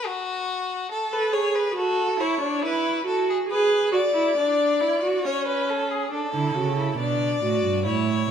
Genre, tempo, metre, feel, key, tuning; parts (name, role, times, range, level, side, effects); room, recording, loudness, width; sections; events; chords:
classical, baroque-style fugue for string quartet; 69 BPM; 3/4; straight; D major; A4 = 439 Hz
clear violin; second line; 0.0-8.3 s; F#4 to D5; -25 LUFS; left 3 dB
rich viola; accompaniment; 1.1-8.3 s; C#4 to A4; -24 LUFS; right 2 dB
warm cello; bass; 6.3-8.3 s; G2 to D3; -25 LUFS; right 6 dB
wet recital hall reverb, RT60 1.6 s; -21 LUFS; side -8 dB against mid
0.0-6.1 A section; 6.1-8.3 B section
0.0 N.C.; 0.9 A; 2.6 E5; 3.5 E7; 5.2 A/C#; 6.1 D